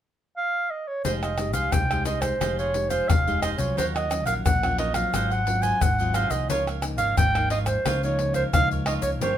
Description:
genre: samba and choro.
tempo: 88 BPM.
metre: 4/4.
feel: straight.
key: F minor.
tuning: A4 = 440 Hz.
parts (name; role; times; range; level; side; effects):
mellow clarinet; melody; 0.4-9.4 s; C5 to Ab5; -25 LUFS; right 2 dB; none.
cavaquinho; accompaniment; 1.0-9.4 s; Eb4 to Gb5; -34 LUFS; right 7 dB; none.
tube shaker, surdo, pandeiro and tamborim; percussion; 1.0-9.4 s; none; -26 LUFS; left 2 dB; none.
nylon-string guitar; accompaniment; 1.1-9.4 s; G2 to G4; -33 LUFS; left 4 dB; none.
fingered electric bass; bass; 1.1-9.4 s; F1 to Eb2; -28 LUFS; equal; none.
room: wet studio reverb, RT60 0.6 s.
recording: minimal, uncompressed stereo recording.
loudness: -22 LUFS.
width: side -10 dB against mid.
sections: 0.0-1.0 A section; 1.0-9.4 B section.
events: none.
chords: 0.0 N.C.; 1.0 Fm9; 3.8 Ebm9; 5.1 Ab13; 6.5 Db69.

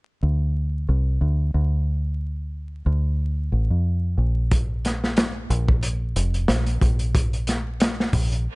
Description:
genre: trip hop.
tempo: 91 BPM.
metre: 4/4.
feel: swing 56% on 16ths.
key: unclear.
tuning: A4 = 439 Hz.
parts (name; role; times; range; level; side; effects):
deep dub fingered electric bass; bass; 0.2-8.5 s; F1 to F2; -22 LUFS; equal; none.
crunchy breakbeat drum kit; drums; 4.5-8.5 s; hi-hat, kick drum, snare drum; -22 LUFS; equal; none.
reverse cymbal; sound effects; 8.5-8.6 s; none; -35 LUFS; right 4 dB; none.
room: little or no reverb.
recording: vinyl crackle, nothing above 11.0 kHz.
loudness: -20 LUFS.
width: side -28 dB against mid.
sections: 0.0-8.6 A section.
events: none.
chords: none.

